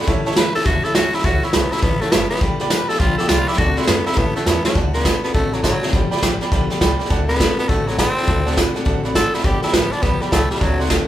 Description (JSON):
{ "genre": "rockabilly", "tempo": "205 BPM", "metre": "4/4", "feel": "swing 64% on 8ths", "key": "D mixolydian", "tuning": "A4 = 440 Hz", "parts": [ { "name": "bright upright piano", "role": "accompaniment", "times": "0.0-11.0 s", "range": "C#5 to D6", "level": "-27 LUFS", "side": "right 5 dB", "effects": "none" }, { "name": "picked steel-string acoustic guitar", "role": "accompaniment", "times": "0.0-11.1 s", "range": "G2 to G4", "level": "-25 LUFS", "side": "left 3 dB", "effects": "none" }, { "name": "soft brush drum kit", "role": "drums", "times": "0.0-11.0 s", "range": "hi-hat, kick drum, snare drum", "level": "-18 LUFS", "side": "equal", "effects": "none" }, { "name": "upright bass", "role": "bass", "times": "0.1-10.9 s", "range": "F#1 to A2", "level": "-24 LUFS", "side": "equal", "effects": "none" }, { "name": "raspy tenor saxophone", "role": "melody", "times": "0.4-10.8 s", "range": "F#3 to B4", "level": "-21 LUFS", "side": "equal", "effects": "none" } ], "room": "moderate large studio reverb, RT60 0.8 s", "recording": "band playing live in one room", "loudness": "-15 LUFS", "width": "side -12 dB against mid", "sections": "0.0-4.8 A section; 4.8-11.1 B section", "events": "tenor saxophone solo 0.0-4.8; drum fill 4.5", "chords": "0.1 A7; 2.4 G7; 3.6 D7; 4.2 A7; 4.8 D7; 5.9 G7; 7.1 D7; 9.4 G7" }